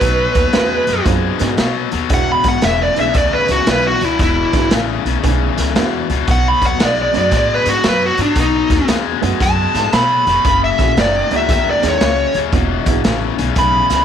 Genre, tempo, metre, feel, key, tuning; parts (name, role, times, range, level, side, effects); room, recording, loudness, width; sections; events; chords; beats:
electric blues shuffle; 115 BPM; 4/4; swing 65% on 8ths; B mixolydian; A4 = 441 Hz
smooth overdriven lead guitar; melody; 0.0-14.0 s; D4 to B5; -16 LUFS; right 1 dB
honky-tonk upright piano; accompaniment; 0.0-13.3 s; G3 to G#4; -24 LUFS; right 12 dB
overdriven electric guitar; riff; 0.0-14.0 s; E2 to G#3; -20 LUFS; left 13 dB
upright bass; bass; 0.0-14.0 s; E1 to B2; -21 LUFS; right 1 dB
raw garage drum kit; drums; 0.0-14.0 s; hi-hat, kick drum, snare drum; -19 LUFS; right 1 dB
light reverb, small room ambience; 1960s-style stereo with parts hard left and right; -12 LUFS; side -8 dB against mid
0.0-14.0 A section
0.0 B7; 2.1 E7; 6.3 B7; 10.4 F#7; 12.5 E7
| 0.01 0.54 1.06 1.58 | 2.11 2.63 3.15 3.67 | 4.20 4.72 5.24 5.76 | 6.28 6.80 7.33 7.85 | 8.37 8.89 9.41 9.93 | 10.45 10.97 11.49 12.01 | 12.53 13.04 13.56